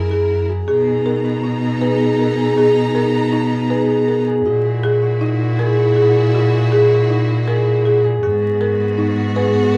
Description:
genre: classical, minimalist pattern music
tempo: 159 BPM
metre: 5/4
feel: straight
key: B major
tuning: A4 = 441 Hz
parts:
  - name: concert harp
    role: melody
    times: 0.0-9.8 s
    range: G#4 to F#5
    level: -21 LUFS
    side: equal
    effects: none
  - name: rich chamber string section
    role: sustained chords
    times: 0.0-9.8 s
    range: B3 to A#5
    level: -27 LUFS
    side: equal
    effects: none
  - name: clear cello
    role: bass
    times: 0.0-9.8 s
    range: F#2 to B2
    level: -20 LUFS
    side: equal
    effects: none
  - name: folk marimba with medium mallets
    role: arpeggios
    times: 0.1-9.8 s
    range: D#4 to B4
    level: -23 LUFS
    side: equal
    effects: none
room: wet large studio reverb, RT60 0.8 s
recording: heard from further back in the room, vinyl crackle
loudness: -16 LUFS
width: mono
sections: 0.7-9.8 A section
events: none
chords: 0.0 F#9; 0.7 Bmaj9; 4.5 F#9/A#; 8.2 G#m11

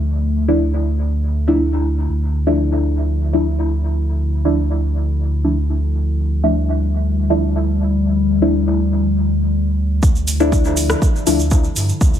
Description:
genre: dub techno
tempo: 121 BPM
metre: 4/4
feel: straight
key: D minor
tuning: A4 = 440 Hz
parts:
  - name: warbly tape-like pad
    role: sustained chords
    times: 0.0-12.2 s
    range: D3 to E4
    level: -24 LUFS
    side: left 4 dB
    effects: chorus, built-in reverb, sidechain pumping
  - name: warm sub bass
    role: bass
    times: 0.0-12.2 s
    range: D2 to G2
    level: -18 LUFS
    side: equal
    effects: sidechain pumping
  - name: deep mellow chord stab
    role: stabs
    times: 0.5-11.4 s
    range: F3 to E4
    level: -19 LUFS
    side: left 1 dB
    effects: chorus, phaser, cassette tape, sidechain pumping, dub echo
  - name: electronic kick drum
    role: drums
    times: 10.0-12.1 s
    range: none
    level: -15 LUFS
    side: equal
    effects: overdrive
  - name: egg shaker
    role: percussion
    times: 10.0-12.2 s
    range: none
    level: -26 LUFS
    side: right 5 dB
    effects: none
  - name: deep house drum kit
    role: drums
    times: 10.3-11.9 s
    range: hi-hat, rim click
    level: -24 LUFS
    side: equal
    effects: overdrive
room: light reverb, digital ambience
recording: echo-heavy mix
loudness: -15 LUFS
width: side -10 dB against mid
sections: 0.0-10.0 A section; 10.0-12.2 B section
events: filter sweep on synth stab 10.0-12.2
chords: 0.0 Dmadd9

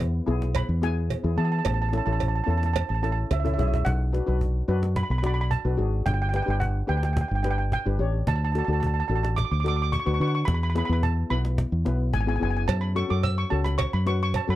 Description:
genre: calypso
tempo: 109 BPM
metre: 4/4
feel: straight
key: unclear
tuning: A4 = 443 Hz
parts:
  - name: steel pan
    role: melody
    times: 0.0-14.6 s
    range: E5 to E6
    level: -30 LUFS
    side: right 4 dB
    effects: none
  - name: steel pan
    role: accompaniment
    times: 0.0-14.6 s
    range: B3 to D5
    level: -31 LUFS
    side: left 4 dB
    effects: none
  - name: fingered electric bass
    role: bass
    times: 0.0-14.6 s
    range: F#1 to E3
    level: -24 LUFS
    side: equal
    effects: none
  - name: cajon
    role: drums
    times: 0.0-14.5 s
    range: none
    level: -31 LUFS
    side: equal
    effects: none
  - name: cowbell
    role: percussion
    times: 0.0-3.4, 12.7-14.5 s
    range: none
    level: -33 LUFS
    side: right 14 dB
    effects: none
room: little or no reverb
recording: dry, close 1970s-style studio recording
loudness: -22 LUFS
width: side -15 dB against mid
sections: 0.0-3.9 A section; 3.9-14.6 A section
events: drum fill 2.8-3.9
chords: 0.0 Eadd9; 1.7 A; 3.9 Bm; 6.1 G; 8.3 D; 10.5 E; 12.7 F#m

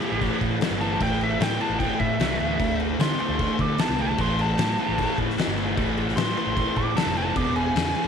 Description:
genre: blues rock power trio and southern rock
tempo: 151 BPM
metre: 4/4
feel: straight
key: A minor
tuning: A4 = 444 Hz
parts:
  - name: biting lead guitar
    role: melody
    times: 0.0-8.1 s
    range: G4 to D6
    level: -28 LUFS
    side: right 1 dB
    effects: overdrive
  - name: crunchy overdriven guitar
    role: riff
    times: 0.0-8.1 s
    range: E2 to B3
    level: -26 LUFS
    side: right 2 dB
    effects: none
  - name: oversized low-tuned drum kit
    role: drums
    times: 0.0-8.0 s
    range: crash cymbal, kick drum, snare drum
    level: -26 LUFS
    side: left 4 dB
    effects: none
  - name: vintage muted fingered electric bass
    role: bass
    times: 0.1-8.1 s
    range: E1 to D3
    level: -30 LUFS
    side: right 1 dB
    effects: none
room: light reverb, small room ambience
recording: 1960s-style stereo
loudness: -21 LUFS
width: side -7 dB against mid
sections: 0.0-8.1 A section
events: lead electric guitar solo 0.0-8.1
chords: 0.0 A7(no3); 2.6 D5; 4.2 Am; 7.4 E7

